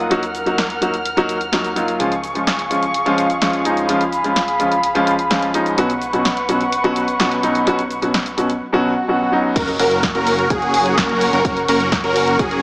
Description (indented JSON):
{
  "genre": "EDM, festival progressive house",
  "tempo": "127 BPM",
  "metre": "4/4",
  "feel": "straight",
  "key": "F# major",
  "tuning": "A4 = 440 Hz",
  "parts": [
    { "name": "clear grand piano", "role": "accompaniment", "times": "0.0-9.5 s", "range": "B2 to F#4", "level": "-18 LUFS", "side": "equal", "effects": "sidechain pumping, digital delay" },
    { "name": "muted chamber string section", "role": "sustained chords", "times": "0.0-12.6 s", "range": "G#4 to E#6", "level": "-21 LUFS", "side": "equal", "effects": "vintage 12-bit sampler grit, sidechain pumping" },
    { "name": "fat analog bass", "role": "bass", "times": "0.0-12.6 s", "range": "F#1 to D#2", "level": "-32 LUFS", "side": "equal", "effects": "sidechain pumping" },
    { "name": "house drum kit", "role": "drums", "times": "0.0-12.6 s", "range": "crash cymbal, hi-hat, shaker, snare drum", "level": "-22 LUFS", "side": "equal", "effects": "none" },
    { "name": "swell and sub drop", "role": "sound effects", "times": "8.8-11.4 s", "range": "none", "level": "-24 LUFS", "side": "right 1 dB", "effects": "none" },
    { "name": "wide unison lead", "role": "arpeggios", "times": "9.6-12.6 s", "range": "G#4 to A#4", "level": "-19 LUFS", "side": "equal", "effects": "ensemble chorus, sidechain pumping, digital delay" },
    { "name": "big supersaw lead", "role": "riff", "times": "9.6-12.6 s", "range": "F#3 to A#4", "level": "-18 LUFS", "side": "equal", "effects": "phaser, sidechain pumping, digital delay" },
    { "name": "electronic kick drum", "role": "drums", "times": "9.6-12.5 s", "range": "none", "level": "-23 LUFS", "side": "equal", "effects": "none" }
  ],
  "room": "moderate lush hall reverb, RT60 1.7 s",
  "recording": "small speaker sound",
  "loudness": "-15 LUFS",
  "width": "side -26 dB against mid",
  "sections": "0.0-9.6 A section; 9.6-12.6 B section",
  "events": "swell 8.8-9.6; drop 9.6-12.6; impact 9.6-11.4",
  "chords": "0.0 D#m; 2.0 C#; 5.8 Bsus2; 9.6 F#"
}